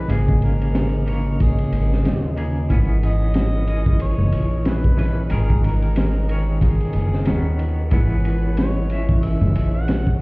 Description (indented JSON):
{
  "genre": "trip hop",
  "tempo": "92 BPM",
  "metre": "4/4",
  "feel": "swing 58% on 16ths",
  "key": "unclear",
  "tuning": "A4 = 440 Hz",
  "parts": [
    { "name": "overdriven harmonica", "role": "melody", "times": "0.0-10.2 s", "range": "D#4 to F#5", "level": "-32 LUFS", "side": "equal", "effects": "tape echo" },
    { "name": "clean electric guitar", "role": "accompaniment", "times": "0.0-10.2 s", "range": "C#3 to E5", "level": "-25 LUFS", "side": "equal", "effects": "tremolo, tape echo" },
    { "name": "string machine, cellos", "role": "sustained chords", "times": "0.0-10.2 s", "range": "C#5 to D#5", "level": "-37 LUFS", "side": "equal", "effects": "none" },
    { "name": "large celesta", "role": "arpeggios", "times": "0.0-10.2 s", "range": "G#4 to D#5", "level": "-36 LUFS", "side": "equal", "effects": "vintage 12-bit sampler grit, tape echo" },
    { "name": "upright bass", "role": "bass", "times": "0.0-10.2 s", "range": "F#1 to D#2", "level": "-20 LUFS", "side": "equal", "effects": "none" },
    { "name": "crunchy breakbeat drum kit", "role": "drums", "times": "0.1-10.2 s", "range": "kick drum, ride cymbal, snare drum", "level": "-22 LUFS", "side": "equal", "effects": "none" }
  ],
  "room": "studio ambience",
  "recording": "heard muffled through a wall, club reverb, vinyl crackle, EQ",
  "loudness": "-17 LUFS",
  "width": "side -25 dB against mid",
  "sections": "0.0-10.2 A section",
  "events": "none",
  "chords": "0.1 A#m7/G#; 2.7 C#m7/G#; 5.3 Bmaj9/G#; 7.9 C#m7/G#"
}